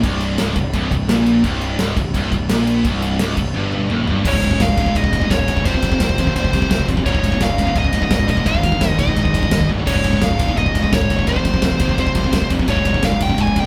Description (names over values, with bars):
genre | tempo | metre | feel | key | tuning
heavy metal | 171 BPM | 4/4 | straight | unclear | A4 = 438 Hz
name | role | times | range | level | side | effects
distorted electric guitar | riff | 0.0-13.7 s | C2 to Ab3 | -28 LUFS | equal | none
heavy high-gain guitar | riff | 0.0-13.6 s | C2 to Ab3 | -27 LUFS | equal | none
heavy high-gain guitar | riff | 0.0-13.6 s | C2 to Ab3 | -26 LUFS | equal | distortion
fuzz picked electric bass | bass | 0.0-13.7 s | C1 to Eb2 | -26 LUFS | equal | overdrive
big rock drum kit | drums | 0.0-13.6 s | crash cymbal, kick drum, ride cymbal, snare drum, toms | -22 LUFS | equal | none
rich chamber string section | sustained chords | 4.2-13.7 s | none | barely audible | none | none
high-gain lead guitar | melody | 4.3-13.7 s | C5 to Ab5 | -24 LUFS | equal | distortion
room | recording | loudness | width
moderate stone room reverb, RT60 1.0 s | band playing live in one room | -17 LUFS | mono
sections
0.0-4.3 A section; 4.3-13.7 B section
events
drum fill 3.6-4.3, 9.7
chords
0.0 Cm; 4.3 Db; 5.7 Fm; 7.1 Db; 8.5 Ab/C; 9.9 Db; 11.3 Fm; 12.7 Db